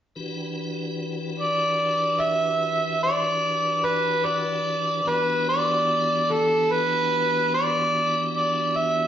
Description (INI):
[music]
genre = blues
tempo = 49 BPM (dotted quarters)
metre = 12/8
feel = straight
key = E minor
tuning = A4 = 436 Hz
[part]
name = tonewheel organ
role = sustained chords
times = 0.2-9.1 s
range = E3 to B4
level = -29 LUFS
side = left 1 dB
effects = overdrive, chorus vibrato, slow rotary speaker
[part]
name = overdriven harmonica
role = melody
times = 1.4-9.1 s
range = A4 to E5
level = -21 LUFS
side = equal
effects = slapback echo
[sound]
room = wet large studio reverb, RT60 1.2 s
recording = band playing live in one room, nothing above 7.5 kHz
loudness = -21 LUFS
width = side -10 dB against mid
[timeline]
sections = 0.1-9.1 A section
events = none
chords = 0.1 Em7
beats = | 0.14 1.36 2.59 3.82 | 5.04 6.27 7.50 8.73